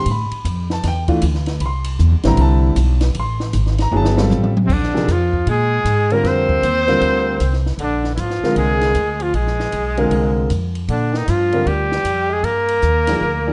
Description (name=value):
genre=modal jazz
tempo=155 BPM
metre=4/4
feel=swing 64% on 8ths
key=Bb mixolydian from 4.7 s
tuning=A4 = 441 Hz
part: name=clear grand piano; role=accompaniment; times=0.0-13.5 s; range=C3 to C6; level=-22 LUFS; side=equal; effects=none
part: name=upright bass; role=bass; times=0.0-13.5 s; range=G1 to Bb2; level=-21 LUFS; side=equal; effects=none
part: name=compact cocktail drum kit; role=drums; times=0.1-13.1 s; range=crash cymbal, hi-hat, kick drum, ride cymbal, snare drum, toms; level=-28 LUFS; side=equal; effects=none
part: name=bright tenor saxophone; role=second line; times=4.6-13.5 s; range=C3 to C4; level=-28 LUFS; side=equal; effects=none
part: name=clear trumpet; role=melody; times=4.7-13.5 s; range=C4 to C5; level=-22 LUFS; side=equal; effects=none
room=light reverb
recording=dark, warm production, nothing above 10.5 kHz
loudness=-17 LUFS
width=mono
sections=0.0-4.7 A section; 4.7-13.5 B section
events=drum fill 3.9-4.7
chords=0.0 Am; 3.2 Fadd9; 4.7 Bb9; 10.9 Gm